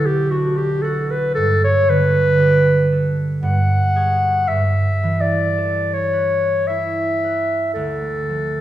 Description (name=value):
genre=classical, impressionist duo for clarinet and harp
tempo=57 BPM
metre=3/4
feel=rubato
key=A mixolydian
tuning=A4 = 440 Hz
part: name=warm clarinet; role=melody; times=0.0-8.6 s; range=F#4 to F#5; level=-18 LUFS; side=equal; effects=none
part: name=concert harp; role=accompaniment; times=0.0-8.6 s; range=B1 to C#5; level=-19 LUFS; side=right 1 dB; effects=none
room=wet recital hall reverb, RT60 1.7 s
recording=heard from further back in the room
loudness=-16 LUFS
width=side -12 dB against mid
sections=0.0-8.6 A section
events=none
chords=0.0 Bm7; 1.4 Gadd9; 3.4 Dadd11/G; 4.5 Aadd9/G; 7.8 Dm6